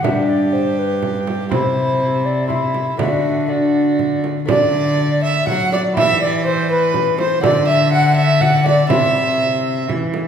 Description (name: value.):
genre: classical, renaissance-style consort dance.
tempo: 122 BPM.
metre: 3/4.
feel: straight.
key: D mixolydian.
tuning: A4 = 440 Hz.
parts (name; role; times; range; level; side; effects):
mellow hollow tenor recorder; melody; 0.0-9.9 s; B4 to F#5; -20 LUFS; left 2 dB; none.
warm violin; second line; 0.0-9.9 s; E4 to F#5; -20 LUFS; right 4 dB; none.
lute; accompaniment; 0.0-10.3 s; G2 to C5; -22 LUFS; equal; none.
frame drum; percussion; 0.0-10.3 s; none; -24 LUFS; right 4 dB; none.
warm cello; bass; 0.1-10.2 s; G2 to F#3; -20 LUFS; left 1 dB; none.
room: wet recital hall reverb, RT60 1.8 s.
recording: heard from further back in the room.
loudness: -14 LUFS.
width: side -8 dB against mid.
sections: 0.0-4.5 A section; 4.5-10.3 A section.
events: none.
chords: 0.1 G; 1.5 C; 3.0 D; 6.0 Em; 7.4 D; 8.9 C.